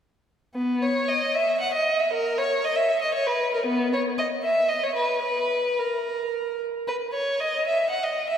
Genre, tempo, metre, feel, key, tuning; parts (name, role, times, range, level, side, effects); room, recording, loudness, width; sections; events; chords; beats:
classical, baroque-style suite movement for unaccompanied violin; 103-121 BPM; 3/4; rubato; B major; A4 = 439 Hz
rich violin; solo; 0.6-8.4 s; B3 to F#5; -22 LUFS; equal
wet church reverb, RT60 3.2 s; heard from further back in the room; -22 LUFS; side -8 dB against mid
0.5-8.4 A section
| 0.54 1.09 1.61 | 2.13 2.64 3.14 | 3.66 4.18 4.69 | 5.23 5.78 6.32 | 6.86 7.39 7.91